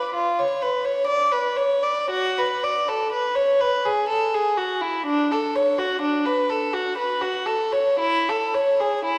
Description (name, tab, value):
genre	classical, baroque-style suite movement for unaccompanied violin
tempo	55-64 BPM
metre	3/4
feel	rubato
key	F# minor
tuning	A4 = 440 Hz
part	warm violin	solo	0.0-9.2 s	D4 to D5	-22 LUFS	equal	none
room	wet concert hall reverb, RT60 2.4 s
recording	heard from further back in the room, vinyl crackle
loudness	-22 LUFS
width	mono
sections	0.0-9.2 A section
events	none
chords	none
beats	0.15 1.10 | 2.10 3.12 4.10 | 5.07 6.03 7.00 | 8.02 9.06